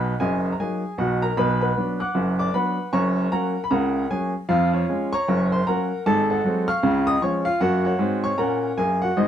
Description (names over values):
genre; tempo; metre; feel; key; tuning
jazz, stride piano; 154 BPM; 4/4; swing 62% on 8ths; F# major; A4 = 437 Hz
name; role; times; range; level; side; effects
clear baby grand piano; solo; 0.0-9.3 s; F#1 to F#6; -20 LUFS; equal; none
room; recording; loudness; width
moderate studio reverb, RT60 0.7 s; minimal, uncompressed stereo recording; -20 LUFS; side -9 dB against mid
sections
0.0-9.3 A section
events
none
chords
0.0 Bmaj7; 1.4 Bm; 2.9 F#; 4.5 Db/F; 5.3 Gb; 6.0 Ab7b9; 6.8 Db; 7.6 Gb